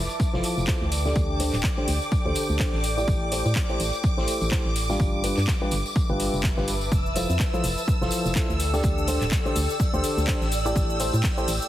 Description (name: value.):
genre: piano house.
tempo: 125 BPM.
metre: 4/4.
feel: swing 57% on 16ths.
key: A minor.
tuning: A4 = 440 Hz.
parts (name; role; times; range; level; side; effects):
string machine, violins; sustained chords; 0.0-11.7 s; D6 to E6; -32 LUFS; equal; ensemble chorus, sidechain pumping.
organ-like FM bass; bass; 0.0-11.6 s; D1 to A2; -27 LUFS; equal; sidechain pumping.
granular cloud pad; texture; 0.0-11.7 s; A4 to A5; -34 LUFS; left 1 dB; built-in reverb, sidechain pumping.
street-band drum kit; drums; 0.1-11.7 s; hi-hat, snare drum; -41 LUFS; equal; none.
tambourine; percussion; 0.1-11.7 s; none; -38 LUFS; equal; none.
electronic kick drum; drums; 0.2-11.3 s; none; -25 LUFS; equal; overdrive.
warm baby grand piano; riff; 0.3-11.5 s; D3 to D5; -29 LUFS; equal; sidechain pumping, low-pass filter, ping-pong delay.
house drum kit; drums; 0.4-11.7 s; handclaps, hi-hat, shaker; -33 LUFS; equal; overdrive.
room: studio reverb.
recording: heavily compressed radio sound.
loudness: -22 LUFS.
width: side -13 dB against mid.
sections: 0.0-11.7 A section.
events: none.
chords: 0.0 Fmaj7; 0.9 D7sus4; 2.8 Am7; 5.0 G7; 6.9 Fmaj7; 8.6 D7sus4; 10.5 Am7.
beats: 0.20 0.68 | 1.16 1.64 2.12 2.60 | 3.08 3.56 4.04 4.52 | 5.00 5.48 5.96 6.44 | 6.92 7.40 7.88 8.36 | 8.84 9.32 9.80 10.28 | 10.76 11.24.